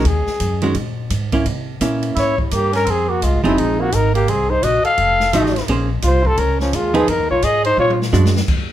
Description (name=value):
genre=jazz, small-group swing and bop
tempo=171 BPM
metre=4/4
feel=swing 63% on 8ths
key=Bb minor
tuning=A4 = 440 Hz
part: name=warm trumpet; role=melody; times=0.0-7.9 s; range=Db4 to F5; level=-18 LUFS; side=left 2 dB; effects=none
part: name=archtop guitar, miked and amplified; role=accompaniment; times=0.0-8.3 s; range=Eb3 to C5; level=-20 LUFS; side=right 2 dB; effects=none
part: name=upright bass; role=bass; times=0.0-8.7 s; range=F1 to C3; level=-20 LUFS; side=equal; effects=none
part: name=open jazz drum kit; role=drums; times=0.0-8.6 s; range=crash cymbal, hi-hat, kick drum, ride cymbal, snare drum, toms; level=-26 LUFS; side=equal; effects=none
part: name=breathy tenor saxophone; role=second line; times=2.2-8.0 s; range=F3 to A4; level=-23 LUFS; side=right 3 dB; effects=none
room=light reverb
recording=minimal, uncompressed stereo recording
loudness=-15 LUFS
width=side -12 dB against mid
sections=0.0-8.5 A section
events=drum fill 7.8-8.5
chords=0.0 Ebm7; 1.5 C7b9; 2.9 Fm7; 4.3 Ab9; 5.0 F7b9; 5.7 Bbm9; 7.1 Fm7b5; 7.8 Bb7b13